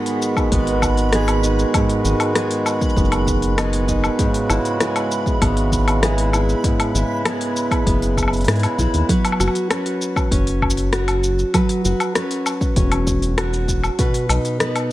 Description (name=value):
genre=folktronica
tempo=98 BPM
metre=4/4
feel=straight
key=unclear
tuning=A4 = 438 Hz
part: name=hand-pumped harmonium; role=sustained chords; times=0.0-9.1 s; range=C#3 to B4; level=-24 LUFS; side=right 1 dB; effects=vintage 12-bit sampler grit
part: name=fingerpicked steel-string acoustic guitar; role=arpeggios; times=0.0-14.9 s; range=G#2 to B4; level=-21 LUFS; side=right 1 dB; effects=tape echo
part: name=backwards swelling texture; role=texture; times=0.0-9.1 s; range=B5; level=-33 LUFS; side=equal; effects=built-in reverb
part: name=organic electronic drum kit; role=drums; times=0.1-14.9 s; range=cabasa, hi-hat, rim click, woodblock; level=-23 LUFS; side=left 2 dB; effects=none
part: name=electronic kick drum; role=drums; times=0.4-14.1 s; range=none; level=-21 LUFS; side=equal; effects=none
part: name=round analog bass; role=bass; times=0.5-14.4 s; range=E1 to G#2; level=-20 LUFS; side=equal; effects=tube saturation
room=light reverb, digital ambience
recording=none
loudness=-16 LUFS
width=side -15 dB against mid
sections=0.0-9.1 A section; 9.1-14.9 B section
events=none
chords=0.0 G#m7; 4.2 C#m7/G#; 9.1 F#sus4; 14.0 B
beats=0.52 1.13 | 1.74 2.35 2.97 3.58 | 4.19 4.80 5.42 6.03 | 6.64 7.25 7.87 8.48 | 9.09 9.70 10.31 10.93 | 11.54 12.15 12.76 13.38 | 13.99 14.60